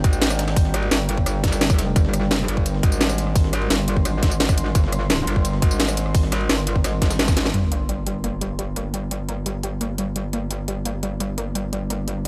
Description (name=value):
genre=dark technical drum and bass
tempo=172 BPM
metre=4/4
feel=straight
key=G phrygian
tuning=A4 = 440 Hz
part: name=deep dark ambient pad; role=sustained chords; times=0.0-12.3 s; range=G3 to C6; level=-32 LUFS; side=equal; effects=chorus, built-in reverb, sidechain pumping
part: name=metallic wobble bass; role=bass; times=0.0-12.3 s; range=G1 to Ab1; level=-26 LUFS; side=equal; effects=chorus
part: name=breakbeat sampler-style drum kit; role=drums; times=0.0-7.5 s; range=hi-hat, ride cymbal, snare drum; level=-36 LUFS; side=equal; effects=none
part: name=drum and bass drum kit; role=drums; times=0.0-12.3 s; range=hi-hat, rim click, snare drum, tambourine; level=-25 LUFS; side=equal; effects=overdrive
part: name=electronic kick drum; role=drums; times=0.0-7.3 s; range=none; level=-21 LUFS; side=equal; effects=overdrive
part: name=unison pluck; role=arpeggios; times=7.5-12.3 s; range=G3 to Bb3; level=-32 LUFS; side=equal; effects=sidechain pumping, tape echo
part: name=sub drop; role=sound effects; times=7.5-8.9 s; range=none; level=-29 LUFS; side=equal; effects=none
room=digital ambience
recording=none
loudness=-22 LUFS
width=mono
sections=0.0-7.5 A section; 7.5-12.3 B section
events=drop 0.0-7.5; drum fill 7.3; band accent 7.5; impact 7.5-8.9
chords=0.0 Gm